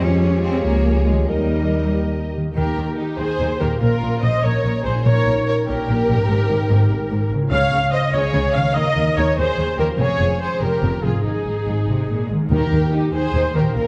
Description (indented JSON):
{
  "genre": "cinematic, heroic adventure film score",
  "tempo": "96 BPM (dotted quarters)",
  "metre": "12/8",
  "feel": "straight",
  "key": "Eb mixolydian",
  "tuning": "A4 = 440 Hz",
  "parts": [
    { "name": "dark symphonic violin section", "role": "melody", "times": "0.0-13.9 s", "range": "G4 to F5", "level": "-34 LUFS", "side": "equal", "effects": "none" },
    { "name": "warm clarinet", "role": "second line", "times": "0.0-2.2 s", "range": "G4 to Bb4", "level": "-31 LUFS", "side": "equal", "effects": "none" },
    { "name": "warm symphonic violin section", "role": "second line", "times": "0.0-13.9 s", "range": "Eb4 to Db5", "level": "-30 LUFS", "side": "equal", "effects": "none" },
    { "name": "rich symphonic viola section", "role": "accompaniment", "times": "0.0-13.9 s", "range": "F4 to F5", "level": "-25 LUFS", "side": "equal", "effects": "none" },
    { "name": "mellow French horn section", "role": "sustained chords", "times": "0.0-2.4 s", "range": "Ab3 to Eb5", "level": "-30 LUFS", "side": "equal", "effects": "none" },
    { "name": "concert harp", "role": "arpeggios", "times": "0.0-13.9 s", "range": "Ab2 to G5", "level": "-27 LUFS", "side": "equal", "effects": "none" },
    { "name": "rich chamber cello section", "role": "bass", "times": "0.0-13.8 s", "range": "F2 to Db4", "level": "-27 LUFS", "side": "equal", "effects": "none" },
    { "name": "warm symphonic double bass section", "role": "bass", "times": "0.0-13.8 s", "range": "F1 to F2", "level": "-24 LUFS", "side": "equal", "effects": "none" },
    { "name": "timpani", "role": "percussion", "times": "12.5-13.1 s", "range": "Eb3", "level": "-24 LUFS", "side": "equal", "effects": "none" }
  ],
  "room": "wet scoring stage reverb, RT60 1.5 s",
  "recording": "dark, warm production",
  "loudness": "-19 LUFS",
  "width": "mono",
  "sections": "0.0-2.6 A section; 2.6-13.9 A section",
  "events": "none",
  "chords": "0.0 Db/F; 1.3 Eb; 3.8 Bbm; 5.0 Eb7/Bb; 6.3 Ab; 7.5 Db; 8.8 Eb; 10.0 Db/F; 11.3 Ab; 12.5 Eb",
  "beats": "| 0.01 0.64 1.28 1.92 | 2.56 3.19 3.81 4.43 | 5.05 5.67 6.29 6.90 | 7.52 8.13 8.76 9.37 | 10.00 10.62 11.25 11.88 | 12.52 13.15 13.78"
}